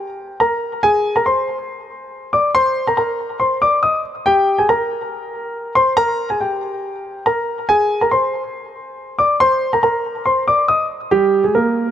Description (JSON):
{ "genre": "hip hop", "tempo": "140 BPM", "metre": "4/4", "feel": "half-time", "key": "G phrygian", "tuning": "A4 = 440 Hz", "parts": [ { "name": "dark concert grand piano", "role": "solo", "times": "0.0-11.9 s", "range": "G3 to Eb6", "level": "-15 LUFS", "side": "equal", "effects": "digital delay" } ], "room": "light reverb, small room ambience", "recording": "none", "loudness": "-15 LUFS", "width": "side -10 dB against mid", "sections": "0.0-11.1 A section", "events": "none", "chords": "0.0 Gm; 0.8 Abadd9; 4.3 Gm; 7.7 Abadd9; 11.1 Gm" }